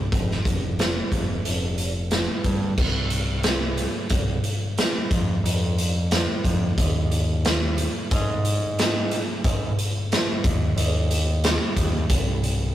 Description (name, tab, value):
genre	quiet-loud alternative rock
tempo	90 BPM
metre	4/4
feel	straight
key	unclear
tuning	A4 = 439 Hz
part	growling picked electric bass	bass	0.0-12.7 s	F1 to Ab2	-25 LUFS	equal	overdrive
part	raw garage drum kit	drums	0.1-12.6 s	crash cymbal, hi-hat, kick drum, snare drum	-22 LUFS	equal	none
room	light reverb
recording	rough rehearsal-room recording, tube saturation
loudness	-21 LUFS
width	side -12 dB against mid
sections	0.0-2.8 A section; 2.8-12.7 B section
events	none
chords	none